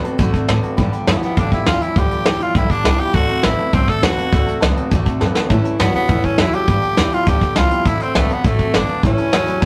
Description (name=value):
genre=rockabilly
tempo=204 BPM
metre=4/4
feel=straight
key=D mixolydian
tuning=A4 = 440 Hz
part: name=picked steel-string acoustic guitar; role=accompaniment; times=0.0-9.7 s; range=G2 to G4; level=-30 LUFS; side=equal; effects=none
part: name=warm upright piano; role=accompaniment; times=0.0-9.7 s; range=C#5 to D6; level=-33 LUFS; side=equal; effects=none
part: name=electric guitar through a small old amp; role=riff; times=0.0-9.7 s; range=G2 to B3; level=-26 LUFS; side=equal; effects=none
part: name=upright bass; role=bass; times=0.0-9.7 s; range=G1 to A2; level=-24 LUFS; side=equal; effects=none
part: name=soft brush drum kit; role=drums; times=0.0-9.7 s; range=hi-hat, kick drum, snare drum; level=-20 LUFS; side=equal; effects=none
part: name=growling tenor saxophone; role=melody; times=1.1-9.7 s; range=A3 to A4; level=-22 LUFS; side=equal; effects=none
room=moderate small room reverb, RT60 0.5 s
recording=rough rehearsal-room recording, faint mains hum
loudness=-17 LUFS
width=mono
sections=0.0-9.7 A section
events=drum fill 5.2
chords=0.0 D7; 0.8 G7; 3.1 D7; 5.5 A7; 6.7 G7; 7.9 D7; 9.0 A7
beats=0.19 0.49 | 0.78 1.08 1.37 1.67 | 1.96 2.26 2.55 2.85 | 3.14 3.44 3.73 4.03 | 4.32 4.62 4.91 5.21 | 5.50 5.79 6.09 6.38 | 6.68 6.97 7.27 7.56 | 7.86 8.15 8.45 8.74 | 9.04 9.33 9.63